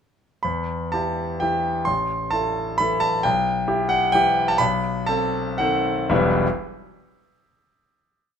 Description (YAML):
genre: classical, piano waltz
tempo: 110-141 BPM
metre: 3/4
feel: rubato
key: E minor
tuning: A4 = 445 Hz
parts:
  - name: bright concert grand piano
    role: solo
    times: 0.4-6.5 s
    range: E1 to C6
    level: -20 LUFS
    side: equal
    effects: none
room: moderate large studio reverb, RT60 1.2 s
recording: minimal, uncompressed stereo recording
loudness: -20 LUFS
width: side -7 dB against mid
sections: 0.5-6.1 A section; 6.1-7.6 final chord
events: none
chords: 0.5 Em; 1.9 Am; 3.3 Em/B; 4.6 B7b9; 6.1 Em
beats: | 0.45 0.94 1.42 | 1.88 2.33 2.81 | 3.25 3.69 4.15 | 4.60 5.08 5.58 | 6.11